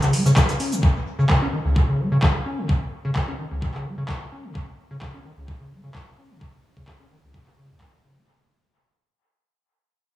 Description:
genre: acid house.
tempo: 129 BPM.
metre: 4/4.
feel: straight.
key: unclear.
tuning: A4 = 440 Hz.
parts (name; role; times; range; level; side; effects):
acid bass, square; riff; 0.0-8.2 s; C#2 to C#4; -23 LUFS; equal; overdrive, wide subtle chorus, dub echo.
booming analog drum machine; drums; 0.0-7.9 s; handclaps, hi-hat, shaker; -28 LUFS; equal; overdrive, dub echo.
snare drum and shaker; drums; 0.0-0.7 s; none; -36 LUFS; right 1 dB; none.
electronic kick drum; drums; 0.4-7.9 s; none; -21 LUFS; equal; none.
room: wet echo chamber reverb, RT60 1.6 s, small room ambience.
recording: echo-heavy mix.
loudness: -19 LUFS.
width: side -15 dB against mid.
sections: 0.0-8.3 A section.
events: fade-out 0.0-8.3.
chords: none.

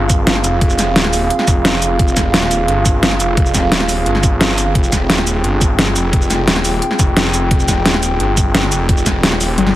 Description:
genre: dark technical drum and bass.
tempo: 174 BPM.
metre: 4/4.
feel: straight.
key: F minor.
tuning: A4 = 439 Hz.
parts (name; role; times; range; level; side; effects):
dark analog pad; sustained chords; 0.0-9.8 s; C4 to G5; -19 LUFS; right 1 dB; chorus, sidechain pumping.
snarling distorted saw bass; bass; 0.0-9.8 s; Eb1 to G1; -18 LUFS; equal; distortion, tube saturation.
dubstep drum kit; drums; 0.1-9.7 s; hi-hat, shaker, snare drum, toms; -16 LUFS; equal; overdrive.
electronic kick drum; drums; 0.1-9.1 s; none; -15 LUFS; equal; none.
room: light reverb.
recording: heavily compressed radio sound.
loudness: -12 LUFS.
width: side -14 dB against mid.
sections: 0.0-9.8 A section.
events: drum fill 9.6.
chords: 0.0 Fm.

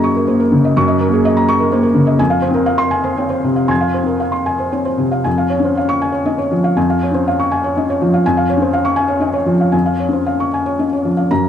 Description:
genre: neoclassical minimalist piano.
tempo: 114-127 BPM.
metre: 3/4.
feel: rubato.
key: Db major.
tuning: A4 = 445 Hz.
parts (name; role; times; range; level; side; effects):
felt-muted upright piano; solo; 0.0-11.5 s; F2 to Ab6; -13 LUFS; equal; tape echo.
room: light reverb.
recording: dark, warm production.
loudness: -13 LUFS.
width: side -9 dB against mid.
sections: 0.0-11.3 A section.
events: none.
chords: 0.0 Gb6; 2.2 Fm; 5.3 Db/F.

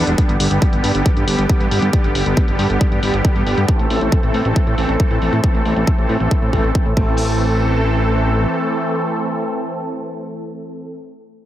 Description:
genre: uplifting trance.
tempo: 137 BPM.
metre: 4/4.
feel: straight.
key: A minor.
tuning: A4 = 442 Hz.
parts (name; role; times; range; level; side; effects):
filtered supersaw swell; sustained chords; 0.0-11.0 s; D3 to A4; -19 LUFS; equal; sidechain pumping.
fat analog bass; bass; 0.0-8.5 s; E1 to A2; -19 LUFS; equal; sidechain pumping.
punchy analog drum machine; drums; 0.1-7.1 s; crash cymbal, hi-hat; -28 LUFS; left 1 dB; low-pass filter on hats, low-pass filter on snare, low-pass filter on cymbals.
electronic kick drum; drums; 0.2-7.1 s; none; -16 LUFS; equal; overdrive.
room: light reverb, digital ambience.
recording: heavily compressed radio sound.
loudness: -14 LUFS.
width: side -12 dB against mid.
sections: 0.0-7.2 A section; 7.2-10.7 B section.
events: none.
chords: 0.2 G; 3.7 Am.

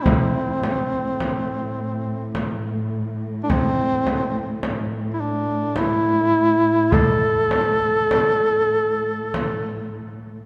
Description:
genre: caucasian folk, Caucasian lament.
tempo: 48-54 BPM.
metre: 3/4.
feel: rubato.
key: A minor.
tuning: A4 = 440 Hz.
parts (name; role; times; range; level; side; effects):
mellow duduk; melody; 0.0-10.0 s; C4 to A4; -22 LUFS; equal; none.
dark chamber cello section; drone; 0.0-10.5 s; A2; -30 LUFS; equal; none.
frame drum; percussion; 0.1-9.6 s; none; -26 LUFS; equal; none.
room: wet church reverb, RT60 3.1 s.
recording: none.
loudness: -21 LUFS.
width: mono.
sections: 0.0-10.5 A section.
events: none.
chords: none.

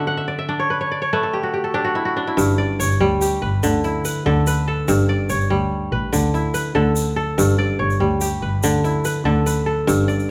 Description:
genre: west african traditional, West African string and xylophone music.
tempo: 96 BPM (dotted quarters).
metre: 12/8.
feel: straight.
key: G lydian.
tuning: A4 = 440 Hz.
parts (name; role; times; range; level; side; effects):
kora; arpeggios; 0.0-10.3 s; G2 to F#5; -21 LUFS; equal; none.
rich double bass; bass; 2.4-10.2 s; G1 to D2; -24 LUFS; equal; none.
tube shaker; percussion; 2.4-10.2 s; none; -33 LUFS; equal; none.
room: wet large studio reverb, RT60 1.4 s.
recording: band playing live in one room.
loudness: -20 LUFS.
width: mono.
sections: 0.0-2.4 A section; 2.4-10.3 B section.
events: kora fill 0.0-2.4.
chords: 0.0 D; 2.4 G; 3.6 D5; 4.9 G; 6.1 D5; 7.4 G; 8.6 D5.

